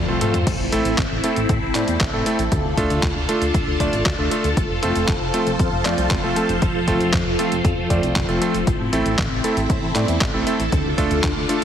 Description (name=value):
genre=italo disco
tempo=117 BPM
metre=4/4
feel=straight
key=F major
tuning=A4 = 439 Hz
part: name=phased string machine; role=sustained chords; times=0.0-11.6 s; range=D3 to C5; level=-23 LUFS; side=left 1 dB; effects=ensemble chorus, phaser
part: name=bright electric grand piano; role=stabs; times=0.0-11.6 s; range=A3 to D5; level=-23 LUFS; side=right 2 dB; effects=ping-pong delay
part: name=chorused synth bass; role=bass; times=0.0-11.5 s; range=D1 to A2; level=-25 LUFS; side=equal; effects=none
part: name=noise sweep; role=sound effects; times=0.0-0.5 s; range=none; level=-38 LUFS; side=equal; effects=none
part: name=detuned 8-bit digital drum machine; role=drums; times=0.1-11.6 s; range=crash cymbal, handclaps, hi-hat, toms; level=-26 LUFS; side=equal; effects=none
part: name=electronic kick drum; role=drums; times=0.5-11.3 s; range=none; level=-24 LUFS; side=equal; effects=overdrive
room=moderate lush hall reverb, RT60 1.7 s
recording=heavily compressed radio sound, multiband compression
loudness=-17 LUFS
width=side -9 dB against mid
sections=0.0-11.6 A section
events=drum fill 0.0-0.5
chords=0.5 Am; 2.5 Dm; 4.6 F; 8.7 Am; 10.7 Dm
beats=| 0.47 0.98 1.49 2.00 | 2.52 3.03 3.54 4.06 | 4.57 5.08 5.59 6.11 | 6.62 7.13 7.65 8.16 | 8.67 9.19 9.70 10.21 | 10.72 11.24